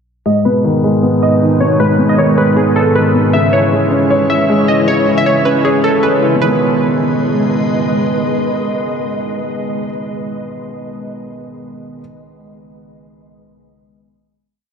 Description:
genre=hip hop, trap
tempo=156 BPM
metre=4/4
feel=half-time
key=G# minor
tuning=A4 = 440 Hz
part: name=glassy wavetable pluck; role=melody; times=0.3-7.5 s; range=G#4 to E5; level=-16 LUFS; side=right 1 dB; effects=chorus, low-pass filter, diffuse ambient delay
part: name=dark baby grand piano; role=accompaniment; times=0.3-12.0 s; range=G#2 to C#5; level=-15 LUFS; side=left 1 dB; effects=low-pass filter
part: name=glassy FM pad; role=sustained chords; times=0.8-9.8 s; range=G#2 to D#5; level=-18 LUFS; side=right 1 dB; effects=ensemble chorus, built-in reverb, low-pass filter
room=wet cathedral reverb, RT60 6.7 s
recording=dreamy mix soaked in reverb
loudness=-11 LUFS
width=side -6 dB against mid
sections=0.3-6.4 breakdown; 6.4-9.5 final chord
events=filter sweep 0.3-6.4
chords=0.3 G#m; 3.3 C#m; 6.4 G#m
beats=| 0.26 0.65 1.03 1.41 | 1.80 2.18 2.57 2.95 | 3.34 3.72 4.11 4.49 | 4.88 5.26 5.64 6.03 | 6.41 6.80 7.18 7.57 | 7.95 8.34 8.72 9.11

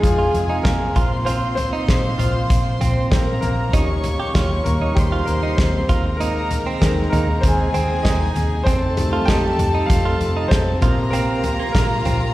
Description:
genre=piano-driven pop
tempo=97 BPM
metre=4/4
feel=straight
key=Ab major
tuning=A4 = 440 Hz
part: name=warm symphonic violin section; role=second line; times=0.0-12.3 s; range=Ab4 to Db6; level=-26 LUFS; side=left 1 dB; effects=plate reverb, slapback echo
part: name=clear baby grand piano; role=accompaniment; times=0.0-12.3 s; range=C3 to G5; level=-24 LUFS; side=left 1 dB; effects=plate reverb, slapback echo
part: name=warm symphonic string section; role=sustained chords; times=0.0-12.3 s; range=C3 to F4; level=-30 LUFS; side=left 1 dB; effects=plate reverb
part: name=direct-recorded clean electric guitar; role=riff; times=0.0-12.2 s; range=Bb3 to G4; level=-27 LUFS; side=right 6 dB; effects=slapback echo
part: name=vintage muted fingered electric bass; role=bass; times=0.0-12.3 s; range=Bb1 to F2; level=-22 LUFS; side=equal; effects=none
part: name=loose indie drum kit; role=drums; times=0.0-12.2 s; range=hi-hat, kick drum, snare drum, toms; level=-20 LUFS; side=equal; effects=none
room=light reverb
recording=live gig heard through the venue's PA, recital hall reverb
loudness=-16 LUFS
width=side -16 dB against mid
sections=0.0-12.3 A section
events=grand piano solo 0.0-12.3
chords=0.0 Fm; 1.0 Bbsus2; 3.7 Eb7; 5.9 Ab/Eb; 8.7 F7; 10.8 Bbsus2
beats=0.04 0.65 | 1.27 1.89 2.50 3.12 | 3.73 4.35 4.97 5.58 | 6.20 6.82 7.43 8.05 | 8.67 9.28 9.90 10.52 | 11.13 11.75

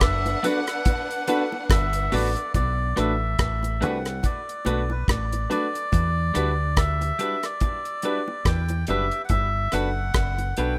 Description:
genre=lovers rock reggae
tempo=71 BPM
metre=4/4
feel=swing 57% on 16ths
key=unclear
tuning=A4 = 441 Hz
part: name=melodica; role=melody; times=0.0-10.8 s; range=B4 to G5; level=-30 LUFS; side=equal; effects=tape echo
part: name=warm studio violin section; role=second line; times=0.0-2.5 s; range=D4 to F#5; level=-34 LUFS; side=equal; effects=dub echo
part: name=deep dub fingered electric bass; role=bass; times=0.0-10.8 s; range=F#1 to E2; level=-28 LUFS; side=equal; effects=none
part: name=deep reggae drum kit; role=drums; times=0.0-10.8 s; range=hi-hat, kick drum, rim click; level=-26 LUFS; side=equal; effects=none
part: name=dark concert grand piano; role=accompaniment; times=0.3-10.7 s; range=D4 to B4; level=-32 LUFS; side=equal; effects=dub echo
part: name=bongos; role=percussion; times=0.3-10.6 s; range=none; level=-38 LUFS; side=equal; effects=none
part: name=clean electric guitar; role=stabs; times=0.4-10.7 s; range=G3 to B4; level=-37 LUFS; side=equal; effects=dub echo
room=little or no reverb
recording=rough home demo mix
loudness=-24 LUFS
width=mono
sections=0.0-2.5 A section; 2.5-10.8 B section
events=none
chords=0.0 Gmaj7; 2.5 Bm7; 5.9 Em7; 9.3 Gmaj7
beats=0.02 0.86 1.70 | 2.55 3.39 4.23 5.08 | 5.92 6.77 7.61 8.45 | 9.30 10.14

